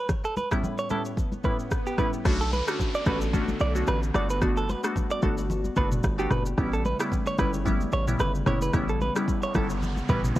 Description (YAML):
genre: afrobeats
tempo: 111 BPM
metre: 4/4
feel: swing 55% on 16ths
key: unclear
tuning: A4 = 441 Hz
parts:
  - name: direct-recorded clean electric guitar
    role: riff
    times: 0.0-10.2 s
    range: G4 to D5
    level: -31 LUFS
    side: right 2 dB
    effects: warbly pitch drift, ping-pong delay
  - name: swell, downlifter and noise sweep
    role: sound effects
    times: 0.8-10.4 s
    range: none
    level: -39 LUFS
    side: equal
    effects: none
  - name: afro-pop drum kit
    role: drums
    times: 0.1-10.4 s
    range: crash cymbal, kick drum, rim click, shaker, toms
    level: -28 LUFS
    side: equal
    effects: none
  - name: congas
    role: percussion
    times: 0.1-10.1 s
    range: none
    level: -35 LUFS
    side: left 1 dB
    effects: none
  - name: glassy wavetable pluck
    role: accompaniment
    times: 0.5-10.3 s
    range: A2 to F#4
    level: -30 LUFS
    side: left 1 dB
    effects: chorus
  - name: hollow soft pad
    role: sustained chords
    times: 2.3-10.4 s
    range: C#3 to A4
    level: -36 LUFS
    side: left 1 dB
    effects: chorus
  - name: hard-hitting 808-style bass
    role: bass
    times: 2.3-10.4 s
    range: F#1 to B1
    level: -28 LUFS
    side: equal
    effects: none
room: little or no reverb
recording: worn, warbling old tape, cassette tape, warbly pitch drift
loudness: -24 LUFS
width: side -15 dB against mid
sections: 0.0-2.3 A section; 2.3-10.4 B section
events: noise sweep 9.1-10.4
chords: 0.0 A7; 2.3 Bm7; 4.1 Gmaj7; 6.6 A7